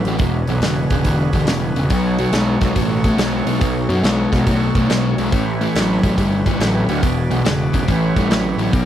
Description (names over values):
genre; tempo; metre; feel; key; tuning
blues rock power trio and southern rock; 141 BPM; 4/4; swing 66% on 8ths; unclear; A4 = 441 Hz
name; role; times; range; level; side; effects
overdriven tonewheel organ; sustained chords; 0.0-8.9 s; C#4 to D5; -26 LUFS; right 4 dB; slow rotary speaker
fuzz guitar; riff; 0.0-8.9 s; E2 to A3; -18 LUFS; left 1 dB; distortion
fuzz picked electric bass; bass; 0.1-8.9 s; E1 to F#2; -21 LUFS; equal; overdrive
big rock drum kit; drums; 0.1-8.9 s; hi-hat, kick drum, snare drum; -21 LUFS; equal; none
room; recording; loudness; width
light reverb; dry, close 1970s-style studio recording; -15 LUFS; side -11 dB against mid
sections
0.0-8.9 A section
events
none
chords
0.2 E7; 1.9 B7; 5.3 A7; 7.0 E7; 7.9 A7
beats
| 0.21 0.64 1.06 1.49 | 1.92 2.34 2.77 3.19 | 3.62 4.05 4.47 4.90 | 5.33 5.75 6.18 6.60 | 7.03 7.46 7.88 8.31 | 8.73